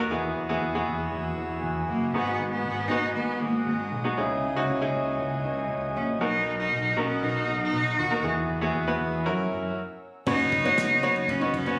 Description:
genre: piano-driven pop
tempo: 118 BPM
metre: 4/4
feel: straight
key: unclear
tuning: A4 = 436 Hz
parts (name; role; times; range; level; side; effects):
- bright grand piano; accompaniment; 0.0-11.8 s; G#2 to C#5; -30 LUFS; equal; none
- airy breathy pad; sustained chords; 0.0-9.8 s; B3 to E6; -38 LUFS; equal; chorus
- fat analog bass; bass; 0.0-11.7 s; F#1 to F#2; -35 LUFS; equal; none
- clear cello; melody; 1.9-11.8 s; G#3 to F#4; -29 LUFS; equal; none
- fingerpicked plugged-in steel-string acoustic guitar; riff; 10.3-11.8 s; B3 to D#4; -35 LUFS; equal; none
- unplugged drum kit; drums; 10.3-11.8 s; crash cymbal, handclaps, kick drum, ride cymbal, snare drum; -38 LUFS; equal; none
room: light reverb, small room ambience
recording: recorded on a phone in the room, club reverb, compression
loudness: -27 LUFS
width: mono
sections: 0.0-10.3 A section; 10.3-11.8 B section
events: stop 9.8-10.3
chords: 0.1 Eadd9; 2.1 G#m7; 4.2 C#madd9; 6.2 Bmaj7; 8.2 Eadd9; 9.3 F#7; 10.3 F#sus4

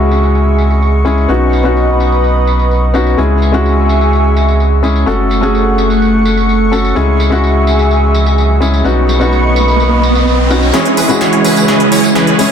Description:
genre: EDM, festival progressive house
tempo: 127 BPM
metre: 4/4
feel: straight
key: C# minor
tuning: A4 = 439 Hz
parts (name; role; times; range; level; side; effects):
- felt-muted upright piano; accompaniment; 0.0-12.5 s; G#3 to A4; -14 LUFS; left 3 dB; tape echo
- lush unison pad; sustained chords; 0.0-12.5 s; C#3 to C#6; -15 LUFS; right 2 dB; chorus, vintage 12-bit sampler grit
- saturated sub bass; bass; 0.0-10.7 s; F#1 to C#2; -12 LUFS; right 1 dB; none
- big-room dance drum kit; drums; 0.1-12.5 s; hi-hat, snare drum, tambourine; -23 LUFS; right 1 dB; overdrive, high-pass filter on perc, low-pass filter on perc, high-pass filter on snare, low-pass filter on snare, high-pass filter on hats, low-pass filter on hats, high-pass filter on room, low-pass filter on room
- riser; sound effects; 8.2-12.5 s; none; -19 LUFS; right 1 dB; none
- big supersaw lead; riff; 10.7-12.5 s; E3 to C#5; -12 LUFS; right 1 dB; low-pass filter, tape echo
room: light reverb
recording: dense, heavily limited modern master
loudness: -9 LUFS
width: side -8 dB against mid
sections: 0.0-10.7 A section; 10.7-12.5 B section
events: riser 8.2-10.7; build-up 10.7-12.5; drum fill 10.7-12.5; filter sweep on analog synth pad 10.7-12.5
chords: 0.0 C#m; 1.3 Badd9; 3.2 C#m; 5.1 F#m; 7.0 C#m; 8.8 Badd9; 10.7 C#m

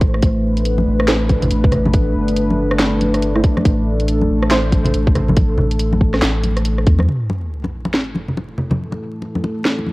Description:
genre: deep dubstep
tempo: 140 BPM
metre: 4/4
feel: swing 61% on 16ths, half-time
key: unclear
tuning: A4 = 440 Hz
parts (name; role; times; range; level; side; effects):
- dark analog pad; sustained chords; 0.0-9.9 s; A3 to C5; -21 LUFS; equal; chorus, cassette tape
- soft dub sub bass; bass; 0.0-7.1 s; G1 to E2; -18 LUFS; equal; none
- electronic kick drum; drums; 0.0-7.0 s; none; -14 LUFS; equal; overdrive, cassette tape
- garage drum kit; drums; 0.0-9.8 s; handclaps, hi-hat, rim click, snare drum; -21 LUFS; equal; overdrive, cassette tape
- congas; percussion; 0.8-9.9 s; none; -21 LUFS; left 1 dB; none
- filtered dub chord stab; stabs; 1.1-4.6 s; A3 to C5; -24 LUFS; right 1 dB; chorus, cassette tape, dub echo
- sub drop; sound effects; 7.1-8.8 s; none; -25 LUFS; equal; none
room: light reverb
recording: home recording on cassette, vinyl crackle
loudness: -14 LUFS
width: side -21 dB against mid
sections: 0.0-7.1 A section; 7.1-9.9 B section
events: filter sweep on synth stab 0.0-7.1; impact 7.1-8.8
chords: 0.0 A5

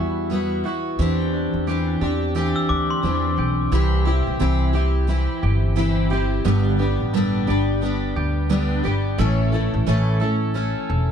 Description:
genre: acoustic pop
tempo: 88 BPM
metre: 4/4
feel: swing 60% on 16ths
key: unclear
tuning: A4 = 440 Hz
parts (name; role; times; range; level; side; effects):
- picked steel-string acoustic guitar; accompaniment; 0.0-11.1 s; G2 to A4; -22 LUFS; equal; double-tracked left and right
- clean electric guitar; arpeggios; 0.0-11.1 s; E3 to A4; -31 LUFS; right 6 dB; ping-pong delay
- upright bass; bass; 0.0-11.1 s; E1 to E2; -22 LUFS; equal; none
- glockenspiel with hard plastic mallets; second line; 2.6-3.7 s; C6 to E6; -28 LUFS; left 4 dB; ping-pong delay, plate reverb
room: light reverb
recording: dark, warm production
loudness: -18 LUFS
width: side -8 dB against mid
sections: 0.0-3.7 A section; 3.7-11.1 B section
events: none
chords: 0.0 Emadd9; 1.0 Cadd9/E; 3.7 C; 6.5 G; 9.2 A

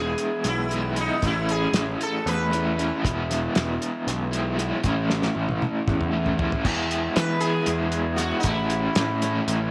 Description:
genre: psychedelic rock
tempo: 232 BPM (eighths)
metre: 7/8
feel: straight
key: A major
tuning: A4 = 440 Hz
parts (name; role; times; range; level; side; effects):
- sitar; melody; 0.0-2.8, 7.2-9.7 s; D#4 to B4; -30 LUFS; equal; tape echo
- crunchy overdriven guitar; riff; 0.0-9.7 s; A2 to E4; -29 LUFS; equal; tremolo
- fuzz picked electric bass; bass; 0.0-9.7 s; E1 to E3; -30 LUFS; equal; overdrive
- cloth-damped thuddy drum kit; drums; 0.2-9.6 s; crash cymbal, hi-hat, kick drum, snare drum, toms; -30 LUFS; equal; none
room: light reverb, studio reverb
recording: none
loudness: -24 LUFS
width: mono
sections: 0.0-6.6 A section; 6.6-9.7 B section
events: drum fill 5.1-6.6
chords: 0.0 E; 1.2 Aadd9; 3.0 E; 4.8 A; 6.6 E; 8.4 A

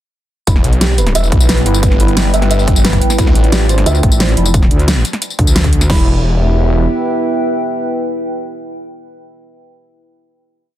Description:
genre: dark technical drum and bass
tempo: 177 BPM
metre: 4/4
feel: straight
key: E phrygian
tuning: A4 = 439 Hz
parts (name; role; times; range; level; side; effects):
- dark analog pad; sustained chords; 1.0-9.4 s; G3 to E5; -21 LUFS; equal; chorus, sidechain pumping
- felt-muted upright piano; arpeggios; 0.5-6.1 s; E4 to E5; -22 LUFS; right 4 dB; sidechain pumping, dub echo
- snarling distorted saw bass; bass; 0.5-3.8, 5.9-6.9 s; E1 to D2; -13 LUFS; equal; distortion, tube saturation
- dubstep drum kit; drums; 0.5-6.0 s; crash cymbal, kick drum, snare drum; -13 LUFS; equal; none
- dubstep drum kit; drums; 0.5-5.9 s; hi-hat, snare drum, tambourine; -17 LUFS; equal; none
- warbly tape-like pad; texture; 1.2-9.4 s; E4 to A5; -22 LUFS; right 1 dB; chorus, built-in reverb, tremolo, sidechain pumping
- metallic wobble bass; bass; 3.9-5.9 s; F1 to D2; -13 LUFS; equal; chorus
room: digital ambience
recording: dense, heavily limited modern master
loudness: -10 LUFS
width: side -13 dB against mid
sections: 0.5-5.9 drop; 5.9-8.6 final chord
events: drop 0.5-5.9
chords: 0.5 Em; 3.2 Dm; 5.9 Em

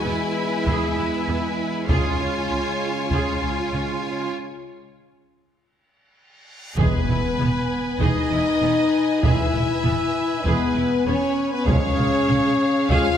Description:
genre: cinematic, epic orchestral film score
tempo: 98 BPM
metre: 4/4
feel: straight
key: E major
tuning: A4 = 440 Hz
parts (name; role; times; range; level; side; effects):
- clear studio violin section; melody; 0.0-13.2 s; B4 to G#5; -31 LUFS; left 5 dB; none
- warm symphonic violin section; second line; 0.0-13.2 s; B4 to G#5; -31 LUFS; left 2 dB; none
- clear trombone section; sustained chords; 0.0-13.1 s; C#3 to G#3; -32 LUFS; right 1 dB; none
- mellow French horn section; sustained chords; 0.0-13.2 s; B3 to G#4; -24 LUFS; left 2 dB; none
- rich symphonic cello section; bass; 0.0-13.0 s; C#2 to E#4; -28 LUFS; right 3 dB; none
- rich symphonic double bass section; bass; 0.0-13.0 s; E1 to E2; -29 LUFS; right 3 dB; none
- rich symphonic viola section; accompaniment; 0.1-13.2 s; B3 to G#4; -31 LUFS; right 1 dB; none
- solo taiko drums; drums; 0.7-13.2 s; none; -24 LUFS; equal; none
- reverse cymbal and impact; sound effects; 6.5-9.2 s; none; -34 LUFS; equal; none
- mellow trumpet section; stabs; 6.8-13.2 s; B4 to E#5; -28 LUFS; right 2 dB; none
- timpani; percussion; 6.8-7.7 s; E2; -28 LUFS; equal; none
room: wet scoring stage reverb, RT60 1.7 s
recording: none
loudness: -19 LUFS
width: side -9 dB against mid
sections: 0.0-6.8 A section; 6.8-13.2 A section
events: break 4.3-6.8; drum fill 5.9-6.8; reverse cymbal 6.5-6.8; impact 6.8-9.2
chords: 0.0 E; 1.9 C#; 6.8 E; 11.7 C#

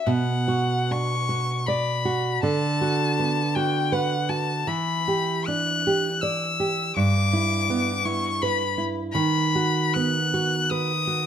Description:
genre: romantic duo for violin and classical guitar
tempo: 69-83 BPM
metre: 3/4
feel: rubato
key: B minor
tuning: A4 = 440 Hz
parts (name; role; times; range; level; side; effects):
- rich violin; melody; 0.0-11.3 s; F#5 to F#6; -25 LUFS; left 5 dB; none
- nylon-string guitar; accompaniment; 0.0-11.3 s; G2 to D5; -24 LUFS; right 3 dB; none
room: light reverb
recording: close, detailed microphones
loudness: -21 LUFS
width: side -9 dB against mid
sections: 0.1-11.3 A section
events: none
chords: 0.1 Bm; 2.4 Bm/D; 4.7 Em7; 7.0 Em/G; 9.1 B/D#

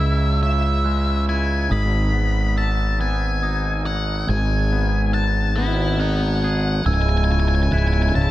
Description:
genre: rock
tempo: 47 BPM (dotted quarters)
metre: 6/8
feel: straight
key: C# minor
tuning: A4 = 439 Hz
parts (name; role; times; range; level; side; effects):
- octave-fuzz lead guitar; melody; 0.0-8.3 s; E5 to B5; -25 LUFS; left 3 dB; distortion, slapback echo
- glockenspiel with soft plastic mallets; arpeggios; 0.0-8.3 s; D#6 to G#6; -33 LUFS; right 10 dB; slapback echo
- twangy electric guitar; arpeggios; 0.0-8.3 s; C#2 to G#4; -26 LUFS; left 1 dB; harmonic tremolo, slapback echo
- fuzz fingered electric bass; bass; 0.0-8.3 s; C#1 to C#2; -19 LUFS; equal; overdrive
- pedal harmonium; sustained chords; 6.9-8.3 s; C#3 to E4; -29 LUFS; right 3 dB; none
room: small room ambience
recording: none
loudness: -18 LUFS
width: side -15 dB against mid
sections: 0.0-6.9 A section; 6.9-8.3 B section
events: none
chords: 0.0 C#m; 1.7 G#m; 6.9 C#m

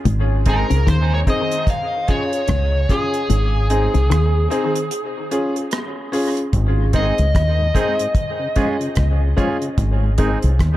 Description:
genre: dub reggae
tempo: 74 BPM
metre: 4/4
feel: swing 60% on 16ths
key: Ab major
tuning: A4 = 440 Hz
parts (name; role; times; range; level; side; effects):
- semi-hollow electric guitar; riff; 0.1-4.3 s; Ab2 to Eb3; -27 LUFS; left 5 dB; dub echo
- deep dub fingered electric bass; bass; 0.1-10.8 s; Ab1 to Eb2; -17 LUFS; equal; none
- deep reggae drum kit; drums; 0.1-10.8 s; hi-hat, kick drum, rim click; -22 LUFS; equal; none
- smooth overdriven lead guitar; melody; 0.5-8.1 s; Ab4 to F5; -23 LUFS; equal; dub echo
- clean electric guitar; accompaniment; 0.5-0.7, 6.9-10.4 s; Ab3 to Ab4; -28 LUFS; right 5 dB; dub echo
- bright upright piano; stabs; 0.5-10.4 s; C4 to Ab4; -24 LUFS; left 1 dB; dub echo
- tonewheel organ; accompaniment; 6.8-10.5 s; Ab2 to Db4; -28 LUFS; left 2 dB; overdrive, stopped rotary speaker, dub echo
room: light reverb, small room ambience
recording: echo-heavy mix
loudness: -16 LUFS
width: side -15 dB against mid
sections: 0.0-10.8 A section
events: break 0.0-6.5; kick muted 3.3-6.5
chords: 0.1 Ab; 1.7 Db; 3.3 Ab; 4.9 Db; 6.5 Ab; 8.2 Db; 9.8 Ab

